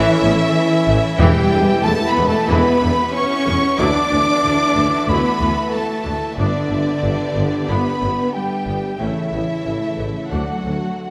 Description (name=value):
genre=cinematic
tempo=92 BPM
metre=4/4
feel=straight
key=unclear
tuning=A4 = 440 Hz
part: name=warm symphonic violin section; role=melody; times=0.0-11.1 s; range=D5 to D6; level=-27 LUFS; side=equal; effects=none
part: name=mellow hollow silver concert flute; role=second line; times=0.0-11.1 s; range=D5 to D6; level=-26 LUFS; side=equal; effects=none
part: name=warm symphonic violin section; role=second line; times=0.0-11.1 s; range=D4 to D5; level=-30 LUFS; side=equal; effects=none
part: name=warm symphonic viola section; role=accompaniment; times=0.0-10.7 s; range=C#3 to E4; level=-30 LUFS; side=equal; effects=none
part: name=warm French horn section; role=sustained chords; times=0.0-11.1 s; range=D4 to D5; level=-28 LUFS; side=equal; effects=none
part: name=warm studio string section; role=sustained chords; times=0.0-11.1 s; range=A3 to F#5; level=-31 LUFS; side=equal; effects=none
part: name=warm trombone section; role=sustained chords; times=0.0-11.1 s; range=C#3 to C#4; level=-28 LUFS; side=equal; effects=none
part: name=warm symphonic cello section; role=bass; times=0.0-11.1 s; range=D3 to D4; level=-25 LUFS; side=equal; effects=none
part: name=warm tuba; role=bass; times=0.0-10.8 s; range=E1 to D2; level=-29 LUFS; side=equal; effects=none
part: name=rich symphonic double bass section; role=bass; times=0.2-10.7 s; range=G1 to E2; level=-26 LUFS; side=equal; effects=none
part: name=timpani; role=percussion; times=1.2-2.1 s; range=E2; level=-24 LUFS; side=equal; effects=none
room=wet scoring stage reverb, RT60 1.8 s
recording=none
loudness=-18 LUFS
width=mono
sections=0.0-11.1 A section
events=none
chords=0.0 A; 1.2 Em; 3.8 Dadd9; 6.4 G; 9.0 A; 10.3 D